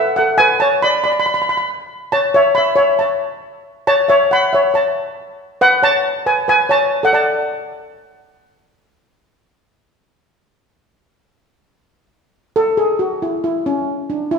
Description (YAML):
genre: calypso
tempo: 138 BPM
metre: 4/4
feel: swing 54% on 16ths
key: unclear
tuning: A4 = 445 Hz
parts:
  - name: steel pan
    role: solo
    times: 0.0-8.6, 12.6-14.4 s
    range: C#4 to B5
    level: -13 LUFS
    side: equal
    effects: none
room: wet recital hall reverb, RT60 1.7 s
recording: recorded in a church or concert hall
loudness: -13 LUFS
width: side -5 dB against mid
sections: 0.0-9.1 A section; 9.1-12.6 B section; 12.6-14.4 C section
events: none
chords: 0.4 B7(no3); 2.1 C#m7; 3.9 N.C.; 5.6 Bsus2; 7.3 N.C.